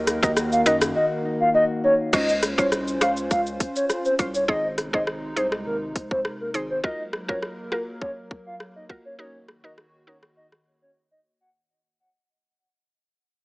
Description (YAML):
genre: dancehall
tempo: 102 BPM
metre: 4/4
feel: straight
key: Db major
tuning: A4 = 440 Hz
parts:
  - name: mallet-like synth pluck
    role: accompaniment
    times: 0.0-10.3 s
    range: Db4 to C5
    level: -27 LUFS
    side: right 1 dB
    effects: chorus
  - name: hollow soft pad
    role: sustained chords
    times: 0.0-11.5 s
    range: C3 to C5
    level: -31 LUFS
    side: equal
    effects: chorus, sidechain pumping
  - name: nylon-string guitar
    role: arpeggios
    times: 0.0-2.2 s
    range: Eb3 to Gb4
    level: -31 LUFS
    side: left 2 dB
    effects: none
  - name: saturated sub bass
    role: bass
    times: 0.0-6.8 s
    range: Ab1 to Gb2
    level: -33 LUFS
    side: equal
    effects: none
  - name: island pop drum kit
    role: drums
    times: 0.1-10.7 s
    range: crash cymbal, hi-hat, kick drum, rim click, shaker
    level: -26 LUFS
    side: equal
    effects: overdrive
  - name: hollow clarinet-like synth lead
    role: melody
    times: 0.2-11.5 s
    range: Bb4 to Gb5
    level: -23 LUFS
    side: equal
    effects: chorus
room: light reverb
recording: small speaker sound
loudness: -21 LUFS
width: side -24 dB against mid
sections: 0.0-2.1 A section; 2.1-11.5 B section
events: silent gap 1.0-2.1; fade-out 2.1-11.5; break 11.0-11.5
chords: 0.0 Ebm; 2.1 Dbmaj7; 4.5 Ab; 6.8 Gbmaj7; 9.2 Ebm